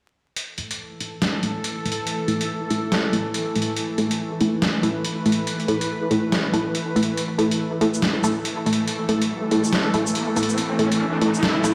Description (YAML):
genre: deep dubstep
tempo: 141 BPM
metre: 4/4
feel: swing 60% on 16ths, half-time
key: unclear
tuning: A4 = 440 Hz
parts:
  - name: bowed-like drone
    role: sustained chords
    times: 0.7-11.7 s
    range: E3 to B4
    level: -29 LUFS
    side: equal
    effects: built-in reverb
  - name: trip hop sampler-style drum kit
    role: drums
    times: 0.4-11.7 s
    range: hi-hat, shaker, snare drum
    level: -28 LUFS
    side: equal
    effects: none
  - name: filtered dub chord stab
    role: stabs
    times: 0.6-11.7 s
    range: A3 to A4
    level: -25 LUFS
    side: equal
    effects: phaser, subtle chorus, dub echo
  - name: riser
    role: sound effects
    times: 9.0-11.7 s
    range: none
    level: -32 LUFS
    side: equal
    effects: none
room: moderate lush hall reverb, RT60 1.8 s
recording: played on a big sound system in a bare room, stone room reverb, vinyl crackle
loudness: -23 LUFS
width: mono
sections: 0.4-7.2 A section; 7.2-11.7 B section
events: filter sweep on synth stab 0.4-7.2; build-up 7.2-11.7; riser 9.0-11.7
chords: 0.4 A5